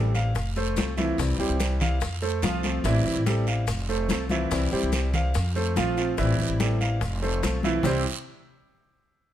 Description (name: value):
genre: latin, Cuban son and guajira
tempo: 144 BPM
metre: 4/4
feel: straight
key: C major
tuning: A4 = 442 Hz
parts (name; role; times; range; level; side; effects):
- fingerpicked steel-string acoustic guitar; accompaniment; 0.0-8.0 s; C3 to F4; -31 LUFS; left 4 dB; none
- warm concert grand piano; arpeggios; 0.0-8.0 s; C3 to F5; -28 LUFS; right 3 dB; none
- upright bass; bass; 0.0-8.0 s; F1 to F2; -26 LUFS; equal; none
- guiro; percussion; 0.1-7.9 s; none; -36 LUFS; right 7 dB; none
- maracas; percussion; 0.1-7.9 s; none; -40 LUFS; left 4 dB; none
- bongos; percussion; 0.2-7.9 s; none; -35 LUFS; left 7 dB; none
- congas; percussion; 0.2-7.9 s; none; -32 LUFS; left 2 dB; none
room: little or no reverb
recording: close, detailed microphones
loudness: -23 LUFS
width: side -11 dB against mid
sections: 0.0-1.2 A section; 1.2-7.8 B section; 7.8-9.3 C section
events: none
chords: 0.4 F; 1.2 C; 2.0 F; 2.9 Am7; 3.7 F; 4.5 C; 5.3 F; 6.2 Am7; 7.0 F; 7.8 C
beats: 0.35 0.77 | 1.19 1.60 2.02 2.43 | 2.85 3.27 3.68 4.10 | 4.51 4.93 5.35 5.76 | 6.18 6.59 7.01 7.43 | 7.84